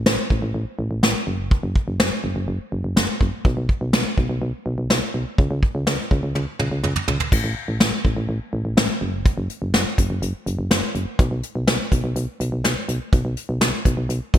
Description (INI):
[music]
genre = synth-pop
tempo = 124 BPM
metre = 4/4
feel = straight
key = F# minor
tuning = A4 = 442 Hz
[part]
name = solid FM bass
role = bass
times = 0.0-14.4 s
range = F#1 to C#2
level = -23 LUFS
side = equal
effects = none
[part]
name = soft brush drum kit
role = drums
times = 0.1-14.4 s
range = crash cymbal, hi-hat, kick drum, snare drum, toms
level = -19 LUFS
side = equal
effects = gated reverb
[sound]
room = light reverb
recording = bright 1980s-style digital production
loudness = -19 LUFS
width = side -11 dB against mid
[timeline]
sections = 0.0-7.3 A section; 7.3-14.4 B section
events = drum fill 6.4-7.3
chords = none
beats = 0.06 0.55 1.03 | 1.51 2.00 2.48 2.96 | 3.45 3.93 4.42 4.90 | 5.38 5.87 6.35 6.84 | 7.32 7.80 8.29 8.77 | 9.26 9.74 10.22 10.71 | 11.19 11.68 12.16 12.64 | 13.13 13.61 14.09